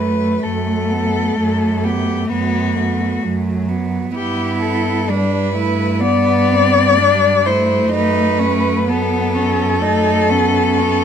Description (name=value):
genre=classical, lyrical piece for cello ensemble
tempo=64 BPM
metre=4/4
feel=rubato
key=E minor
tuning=A4 = 438 Hz
part: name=rich cello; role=melody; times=0.0-11.0 s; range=F#4 to D5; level=-18 LUFS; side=left 4 dB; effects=none
part: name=warm cello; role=second line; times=0.0-11.0 s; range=A3 to E4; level=-21 LUFS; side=right 6 dB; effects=none
part: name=warm cello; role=accompaniment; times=0.0-11.0 s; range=F#3 to C#4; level=-20 LUFS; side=left 2 dB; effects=none
part: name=warm cello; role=bass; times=0.0-11.0 s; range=F#2 to G2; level=-21 LUFS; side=right 2 dB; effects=none
room=light reverb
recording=close, detailed microphones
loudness=-14 LUFS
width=side -8 dB against mid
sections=0.0-11.0 A section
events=none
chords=0.4 B5/F#; 4.2 Em/G; 7.9 D#dim/F#